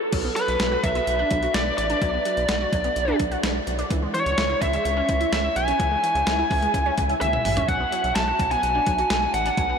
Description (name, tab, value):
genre	synth-pop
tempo	127 BPM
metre	4/4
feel	straight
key	B dorian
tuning	A4 = 441 Hz
part	wide unison pluck	arpeggios	0.1-9.8 s	E3 to F#4	-29 LUFS	right 2 dB	phaser, diffuse ambient delay
part	rubbery square bass	bass	0.1-9.7 s	A1 to C#2	-29 LUFS	equal	none
part	clean 12-bit digital drum machine	drums	0.1-9.7 s	crash cymbal, hi-hat, kick drum, snare drum, toms	-28 LUFS	equal	none
part	biting lead guitar	melody	0.4-9.8 s	B4 to A5	-22 LUFS	equal	overdrive, diffuse ambient delay
room	wet huge ambient reverb, RT60 9.0 s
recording	dreamy mix soaked in reverb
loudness	-20 LUFS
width	side -6 dB against mid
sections	0.1-9.8 A section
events	drum fill 7.2-7.7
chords	0.1 Bm; 3.9 C#m; 7.7 B5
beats	| 0.13 0.60 1.07 1.54 | 2.02 2.49 2.96 3.43 | 3.91 4.38 4.85 5.32 | 5.80 6.27 6.74 7.21 | 7.69 8.16 8.63 9.10 | 9.57